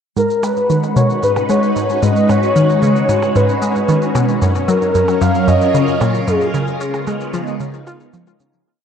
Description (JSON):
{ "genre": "ambient, sequencer-driven space music", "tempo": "113 BPM", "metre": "4/4", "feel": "straight", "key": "G# dorian", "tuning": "A4 = 439 Hz", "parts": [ { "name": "breathy flute-like synth lead", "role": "melody", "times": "0.2-7.3 s", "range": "G#4 to E#5", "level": "-17 LUFS", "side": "left 1 dB", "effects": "ensemble chorus, shimmer reverb, ping-pong delay" }, { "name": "phased string machine", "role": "sustained chords", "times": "0.2-8.7 s", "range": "C#3 to B4", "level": "-19 LUFS", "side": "equal", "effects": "ensemble chorus, phaser, shimmer reverb" }, { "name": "analog pluck", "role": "riff", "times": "0.2-8.5 s", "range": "F#2 to E#4", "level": "-17 LUFS", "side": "equal", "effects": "chorus, ping-pong delay" }, { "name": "shaker and percussion blips", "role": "percussion", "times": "0.2-8.6 s", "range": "none", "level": "-31 LUFS", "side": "right 3 dB", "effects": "ping-pong delay" }, { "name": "pulsing gated texture", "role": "texture", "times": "0.6-8.7 s", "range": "C#4 to C#5", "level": "-27 LUFS", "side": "left 2 dB", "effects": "chorus, built-in reverb, shimmer reverb" } ], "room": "wet spring reverb, RT60 2.2 s", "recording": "echo-heavy mix", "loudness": "-13 LUFS", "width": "side -7 dB against mid", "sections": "0.2-8.7 A section", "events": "fade-out 5.8-8.7", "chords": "0.2 G#m7; 4.4 F#maj7; 6.5 C#13" }